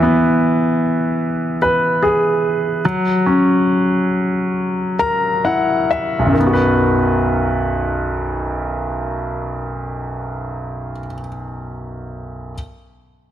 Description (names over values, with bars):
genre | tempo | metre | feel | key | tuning
pop | 65-76 BPM | 4/4 | straight | B major | A4 = 439 Hz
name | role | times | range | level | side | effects
bright grand piano | accompaniment | 0.0-12.6 s | B1 to A#5 | -16 LUFS | equal | none
room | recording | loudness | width
moderate concert hall reverb, RT60 2.4 s | dense, heavily limited modern master | -15 LUFS | side -11 dB against mid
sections
0.0-6.4 A section; 6.4-10.0 B section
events
slowing down 0.0-6.4; grand piano fill 4.5-6.4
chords
0.0 E; 2.8 F#7; 6.4 B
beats
0.41 1.21 2.02 | 2.84 3.68 4.54 5.44 | 6.36 7.27 8.19 9.11